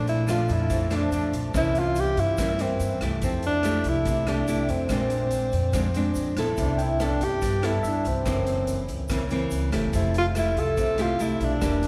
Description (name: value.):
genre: bossa nova.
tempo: 143 BPM.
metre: 4/4.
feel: straight.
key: unclear.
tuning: A4 = 440 Hz.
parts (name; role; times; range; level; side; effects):
mellow tenor saxophone; melody; 0.0-11.9 s; C4 to A4; -29 LUFS; equal; none.
nylon-string guitar; accompaniment; 0.0-11.9 s; F2 to A4; -30 LUFS; equal; none.
upright bass; bass; 0.0-11.9 s; E1 to G2; -31 LUFS; equal; none.
swinging big-band drum kit; drums; 0.1-11.9 s; hi-hat, kick drum, rim click; -36 LUFS; equal; none.
tube shaker; percussion; 0.1-11.9 s; none; -49 LUFS; equal; none.
barky tine electric piano; accompaniment; 6.8-8.4 s; E5 to G5; -39 LUFS; equal; none.
room: wet church reverb, RT60 3.2 s.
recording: recorded in a church or concert hall.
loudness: -25 LUFS.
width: mono.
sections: 0.0-11.9 A section.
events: none.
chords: 0.0 Bbmaj7; 1.5 C7b9; 3.2 Fmaj9; 4.9 Bb9; 6.6 C6; 8.3 F#7#11; 9.9 Fmaj9.